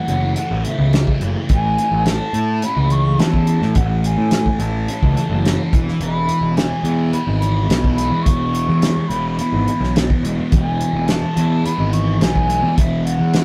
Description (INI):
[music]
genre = psychedelic rock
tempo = 106 BPM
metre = 4/4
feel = straight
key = unclear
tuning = A4 = 439 Hz
[part]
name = concert flute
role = melody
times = 0.0-13.4 s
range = E5 to C#6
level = -26 LUFS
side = equal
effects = none
[part]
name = thick fuzz guitar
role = riff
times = 0.0-13.4 s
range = F#2 to E4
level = -24 LUFS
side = equal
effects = distortion, phaser
[part]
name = fuzz picked electric bass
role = bass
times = 0.1-13.4 s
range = E1 to A2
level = -21 LUFS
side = equal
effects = overdrive
[part]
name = damped 70s drum kit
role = drums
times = 0.1-13.4 s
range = hi-hat, kick drum, snare drum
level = -20 LUFS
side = equal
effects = none
[sound]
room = moderate studio reverb, RT60 0.6 s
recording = rough rehearsal-room recording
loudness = -17 LUFS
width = mono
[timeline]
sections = 0.0-13.4 A section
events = none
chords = 0.0 F#m7; 5.7 E